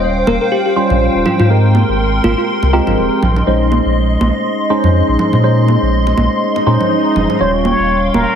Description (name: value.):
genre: deep house.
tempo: 122 BPM.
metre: 4/4.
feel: swing 56% on 16ths.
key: Bb dorian.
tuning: A4 = 440 Hz.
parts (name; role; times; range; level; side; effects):
bell-like FM electric piano; melody; 0.0-2.9 s; F4 to Bb4; -20 LUFS; left 1 dB; chorus, phaser, tape echo.
hollow soft pad; sustained chords; 0.0-8.4 s; Bb4 to C6; -20 LUFS; left 1 dB; ensemble chorus.
tine electric piano; stabs; 0.0-8.4 s; G3 to Db5; -15 LUFS; equal; phaser, tape echo.
warm sub bass; bass; 0.0-8.2 s; Eb1 to Bb2; -15 LUFS; equal; tube saturation.
congas; percussion; 0.3-8.3 s; none; -20 LUFS; right 3 dB; overdrive.
swell; sound effects; 6.6-7.4 s; none; -21 LUFS; right 1 dB; none.
trumpet with plunger mute; melody; 7.4-8.4 s; Bb4 to Db5; -16 LUFS; left 1 dB; tape echo.
room: moderate echo chamber reverb, RT60 1.3 s.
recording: heavily compressed radio sound.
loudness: -11 LUFS.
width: side -8 dB against mid.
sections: 0.0-8.4 A section.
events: swell 6.6-7.4.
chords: 0.0 Eb13; 1.5 Abmaj9; 3.2 Bbm11; 7.4 Eb13.